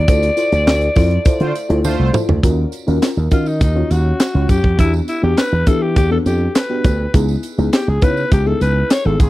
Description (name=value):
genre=early-eighties boogie funk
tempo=102 BPM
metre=4/4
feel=straight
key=unclear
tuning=A4 = 441 Hz
part: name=growling alto saxophone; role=melody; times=0.0-9.3 s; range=Eb4 to D5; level=-20 LUFS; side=left 2 dB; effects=none
part: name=slap bass with an envelope filter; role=bass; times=0.0-9.3 s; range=G1 to E3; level=-16 LUFS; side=equal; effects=none
part: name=FM electric piano with soft pad layer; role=accompaniment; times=0.1-9.3 s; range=B3 to Db5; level=-22 LUFS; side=left 2 dB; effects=chorus, tremolo
part: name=tight funk drum kit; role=drums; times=0.1-9.3 s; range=handclaps, hi-hat, kick drum, snare drum, toms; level=-14 LUFS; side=equal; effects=none
part: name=tambourine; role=percussion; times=0.1-9.3 s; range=none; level=-37 LUFS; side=right 12 dB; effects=none
part: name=analog synth brass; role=second line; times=1.4-2.1 s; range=A3 to C5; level=-21 LUFS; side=right 2 dB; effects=chorus
room=studio ambience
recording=dry, close 1970s-style studio recording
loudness=-13 LUFS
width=side -17 dB against mid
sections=0.0-2.4 A section; 2.4-9.3 B section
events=drum fill 1.8-2.4; alto saxophone solo 2.4-9.3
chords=0.1 Dm9; 2.4 Ebm9; 4.8 Em9; 7.1 C#m9